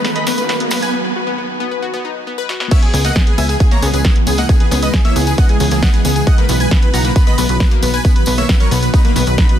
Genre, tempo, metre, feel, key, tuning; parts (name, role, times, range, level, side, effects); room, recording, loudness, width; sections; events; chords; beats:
uplifting trance; 135 BPM; 4/4; straight; A4 = 440 Hz
supersaw chords; melody; 0.0-9.6 s; D#4 to B5; -21 LUFS; equal; sidechain pumping, low-pass filter, dub echo
plucky unison lead; second line; 0.0-9.6 s; G#5 to B6; -28 LUFS; equal; sidechain pumping, dub echo
analog pluck; arpeggios; 0.0-9.5 s; A#3 to B4; -23 LUFS; left 5 dB; chorus, sidechain pumping, dub echo
punchy analog drum machine; drums; 0.0-9.6 s; crash cymbal, hi-hat, snare drum; -23 LUFS; equal; soft clipping on snare, high-pass filter on snare, studio reverb, high-pass filter on hats, high-pass filter on cymbals
riser; sound effects; 0.0-0.9 s; -24 LUFS; right 2 dB
tambourine; percussion; 0.1-9.5 s; -28 LUFS; left 3 dB
electronic kick drum; drums; 2.7-9.5 s; -12 LUFS; equal; studio reverb
plucky analog bass; bass; 2.9-9.4 s; B1 to C#2; -17 LUFS; equal; sidechain pumping
digital ambience; dense, heavily limited modern master, high-pass filter; -12 LUFS; side -10 dB against mid
0.0-2.7 A section; 2.7-9.6 B section
build-up 0.0-2.7; drum fill 0.0-0.9, 2.5; riser 0.0-0.9; filter sweep on synth pluck 0.0-2.7; break 0.9-2.7; drop 2.7-9.6
0.0 B; 2.7 C#m; 6.3 B
0.05 0.49 | 0.94 1.38 1.83 2.27 | 2.71 3.16 3.60 4.05 | 4.49 4.94 5.38 5.83 | 6.27 6.71 7.16 7.60 | 8.05 8.49 8.94 9.38